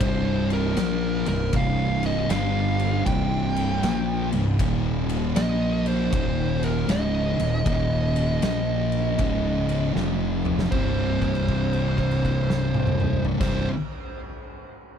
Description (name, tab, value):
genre	stoner and doom metal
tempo	78 BPM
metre	4/4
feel	swing 65% on 8ths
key	C phrygian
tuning	A4 = 442 Hz
part	fuzz lead guitar	melody	0.0-13.7 s	Bb4 to G5	-30 LUFS	right 2 dB	distortion, tape echo
part	thick fuzz guitar	riff	0.0-13.7 s	C2 to Bb3	-27 LUFS	left 10 dB	distortion
part	thick fuzz guitar	riff	0.0-13.7 s	C2 to Bb3	-27 LUFS	right 10 dB	distortion
part	fuzz fingered electric bass	bass	0.0-13.7 s	C1 to Bb1	-27 LUFS	equal	overdrive
part	oversized low-tuned drum kit	drums	0.0-13.6 s	crash cymbal, kick drum, ride cymbal, snare drum, toms	-29 LUFS	equal	none
room	small room ambience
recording	none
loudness	-21 LUFS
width	side -8 dB against mid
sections	0.0-10.7 A section; 10.7-13.8 B section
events	drum fill 9.9-10.7; held note 10.7-13.3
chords	0.0 C5; 2.3 G5; 3.1 C5; 4.6 Eb5; 5.4 Bb5; 6.1 Eb5; 8.4 Bb5; 9.2 Db5; 9.9 F5; 10.7 C5